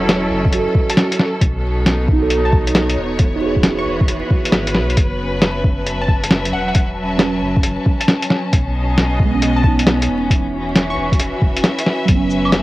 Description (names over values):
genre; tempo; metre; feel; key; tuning
future garage; 135 BPM; 4/4; swing 67% on 16ths; F# dorian; A4 = 441 Hz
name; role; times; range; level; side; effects
muted felt-like synth keys; accompaniment; 0.0-12.6 s; F#3 to D#5; -22 LUFS; right 4 dB; chorus, sidechain pumping, cassette tape, analog delay
clear studio string section; sustained chords; 0.0-12.6 s; B2 to A5; -21 LUFS; left 1 dB; sidechain pumping, cassette tape
warm sub bass; bass; 0.0-12.6 s; E1 to B1; -22 LUFS; equal; sidechain pumping
lo-fi sampler-style drum kit; drums; 0.1-12.6 s; cabasa, claves, hi-hat, snare drum; -16 LUFS; equal; none
electronic kick drum; drums; 0.5-12.2 s; none; -16 LUFS; equal; overdrive
glassy wavetable pluck; melody; 0.9-11.5 s; F#5 to C#6; -27 LUFS; left 1 dB; chorus, cassette tape, analog delay
room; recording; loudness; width
moderate studio reverb, RT60 0.6 s; home recording on cassette, vinyl crackle; -14 LUFS; side -17 dB against mid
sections
0.0-12.6 A section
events
none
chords
0.0 F#m7; 3.2 E69; 5.0 F#m7; 8.5 B7; 10.3 Esus2; 12.1 F#m7